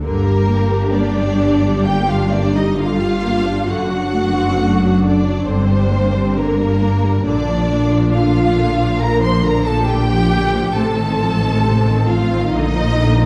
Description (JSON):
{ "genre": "classical, slow romantic movement for string orchestra", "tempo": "68 BPM", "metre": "4/4", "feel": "rubato", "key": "G minor", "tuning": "A4 = 440 Hz", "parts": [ { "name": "rich studio violin section", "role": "melody", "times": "0.0-13.3 s", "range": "Bb4 to C6", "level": "-25 LUFS", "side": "equal", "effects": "none" }, { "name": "warm symphonic violin section", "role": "second line", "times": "0.0-13.3 s", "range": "Bb3 to C5", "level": "-24 LUFS", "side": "equal", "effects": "none" }, { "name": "warm symphonic viola section", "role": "accompaniment", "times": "0.0-13.3 s", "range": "C3 to G4", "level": "-23 LUFS", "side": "equal", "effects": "none" }, { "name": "rich symphonic cello section", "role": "bass", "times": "0.0-13.3 s", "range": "F#2 to Bb2", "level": "-23 LUFS", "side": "equal", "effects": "none" }, { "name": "rich symphonic double bass section", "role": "bass", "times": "0.0-13.3 s", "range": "F#1 to Bb1", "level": "-22 LUFS", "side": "equal", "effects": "none" } ], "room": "wet recital hall reverb, RT60 1.3 s", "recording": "dark, warm production", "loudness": "-16 LUFS", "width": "mono", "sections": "0.0-13.3 A section", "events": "none", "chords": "0.0 Gm; 3.7 D7/F#; 5.5 Gm; 7.3 Bb; 10.7 F7/A; 12.5 Bb" }